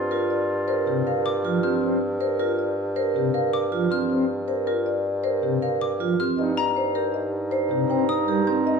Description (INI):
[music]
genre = classical, minimalist pattern music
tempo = 158 BPM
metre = 6/4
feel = straight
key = G minor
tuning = A4 = 444 Hz
[part]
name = marimba with soft mallets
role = melody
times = 0.0-8.8 s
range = G4 to G5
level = -29 LUFS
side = left 9 dB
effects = none
[part]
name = mellow clarinet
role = second line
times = 0.0-1.6, 6.4-8.8 s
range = Eb4 to F4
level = -29 LUFS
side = right 3 dB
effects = none
[part]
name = mellow bassoon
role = bass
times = 0.0-8.8 s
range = G2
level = -27 LUFS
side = right 1 dB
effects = none
[part]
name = vibraphone with medium hard mallets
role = arpeggios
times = 0.1-8.7 s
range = C4 to C5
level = -27 LUFS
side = right 8 dB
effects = none
[part]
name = pipe organ, principal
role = accompaniment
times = 0.9-8.8 s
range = C3 to Eb4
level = -28 LUFS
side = left 3 dB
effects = none
[part]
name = xylophone with rubber mallets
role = arpeggios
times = 1.3-8.7 s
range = Bb5 to G6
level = -30 LUFS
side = left 7 dB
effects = none
[sound]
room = wet recital hall reverb, RT60 1.4 s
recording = dark, warm production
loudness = -21 LUFS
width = side -5 dB against mid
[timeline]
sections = 0.0-8.8 A section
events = none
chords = 0.0 Gm7; 6.4 Eb/G